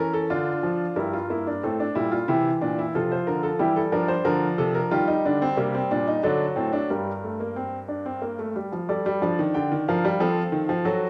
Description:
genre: classical, baroque-style 4-part fugue for grand piano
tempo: 91 BPM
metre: 3/4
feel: straight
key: G minor from 4.9 s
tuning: A4 = 440 Hz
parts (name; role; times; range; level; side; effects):
- clear baby grand piano; solo; 0.0-11.1 s; G2 to G5; -25 LUFS; equal; none
room: wet recital hall reverb, RT60 1.4 s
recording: none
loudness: -25 LUFS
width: mono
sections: 1.0-8.9 A section; 8.9-11.1 B section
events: none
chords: 0.3 Dm; 1.0 Gm; 2.3 C; 3.0 F/C; 4.3 Bb/D; 4.9 Eb; 6.2 D7; 6.9 Gm; 10.2 F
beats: 0.31 | 0.98 1.64 2.30 | 2.95 3.60 4.26 | 4.92 5.57 6.23 | 6.89 7.56 8.22 | 8.89 9.55 10.21 | 10.86

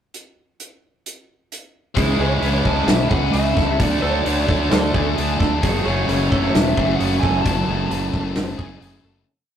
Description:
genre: rock, shoegaze and dream pop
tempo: 131 BPM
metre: 4/4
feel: straight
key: unclear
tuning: A4 = 440 Hz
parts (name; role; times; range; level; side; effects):
- loose indie drum kit; drums; 0.1-8.9 s; hi-hat, kick drum, snare drum; -22 LUFS; equal; none
- biting overdriven guitar; riff; 1.9-9.3 s; F#2 to D4; -24 LUFS; left 6 dB; none
- lead guitar through a small cranked amp; melody; 2.0-8.8 s; G#4 to A5; -26 LUFS; left 1 dB; overdrive
- biting overdriven guitar; riff; 2.0-9.3 s; F#2 to F#4; -23 LUFS; right 4 dB; none
- fuzz fingered electric bass; bass; 2.0-9.2 s; E1 to D2; -23 LUFS; equal; overdrive
- twelve-string electric guitar; arpeggios; 2.2-9.3 s; G#4 to A5; -31 LUFS; right 1 dB; none
room: wet studio ambience, RT60 0.5 s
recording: rough rehearsal-room recording, tube saturation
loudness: -16 LUFS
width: side -9 dB against mid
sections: 0.1-2.0 pickup bar; 2.0-9.3 verse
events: fade-out 7.4-9.3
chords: 0.1 N.C.; 2.0 C#m; 3.8 Dmaj7; 5.6 F#madd9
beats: | 0.14 0.60 1.05 1.51 | 1.97 2.42 2.88 3.34 | 3.79 4.25 4.71 5.17 | 5.62 6.08 6.54 6.99 | 7.45 7.90 8.36 8.81

